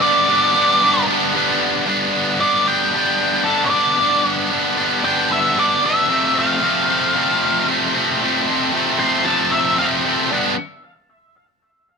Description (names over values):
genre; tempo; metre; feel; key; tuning
rock; 114 BPM; 4/4; straight; G mixolydian; A4 = 440 Hz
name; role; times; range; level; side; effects
octave-fuzz lead guitar; melody; 0.0-9.9 s; A4 to C6; -18 LUFS; equal; distortion, analog delay
tight distorted guitar; riff; 0.0-10.5 s; F2 to D4; -17 LUFS; equal; distortion
room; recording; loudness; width
light reverb; none; -15 LUFS; side -5 dB against mid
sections
0.0-1.9 A section; 1.9-10.3 B section; 10.3-12.0 C section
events
lead electric guitar solo 1.9-10.3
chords
0.0 G; 6.1 F; 10.3 G